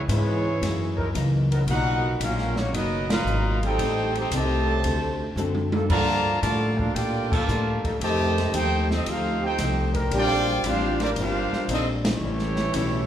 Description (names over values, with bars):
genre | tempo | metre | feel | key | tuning
jazz, big band swing | 114 BPM | 4/4 | swing 69% on 8ths | Bb major | A4 = 440 Hz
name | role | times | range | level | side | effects
clear trumpet section | melody | 0.0-13.1 s | A3 to Bb5 | -27 LUFS | equal | none
upright bass | bass | 0.0-13.1 s | F#1 to Bb2 | -26 LUFS | equal | none
warm trombone section | second line | 0.1-13.1 s | A#2 to G4 | -29 LUFS | right 3 dB | none
archtop guitar, miked and amplified | accompaniment | 0.1-13.1 s | Gb2 to A4 | -31 LUFS | left 4 dB | none
mellow trombone section | sustained chords | 0.1-11.7 s | Gb3 to Cb5 | -33 LUFS | left 2 dB | none
open jazz drum kit | drums | 0.1-12.9 s | crash cymbal, hi-hat, kick drum, ride cymbal, snare drum, toms | -31 LUFS | equal | none
room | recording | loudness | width
wet recital hall reverb, RT60 1.6 s | recorded in a church or concert hall | -21 LUFS | side -10 dB against mid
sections
0.0-13.1 A section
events
band accent 3.0, 7.2, 12.0; drum fill 5.4-5.9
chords
0.0 Dbm7; 0.6 Gb13; 1.7 Bmaj7; 3.8 Am7b5; 4.8 D7; 5.9 Gm9; 8.0 F9; 10.1 Bb69; 12.2 A7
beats
0.10 0.62 1.15 | 1.68 2.21 2.73 3.26 | 3.79 4.32 4.84 5.37 | 5.90 6.43 6.95 7.48 | 8.01 8.53 9.06 9.59 | 10.11 10.64 11.17 11.69 | 12.22 12.74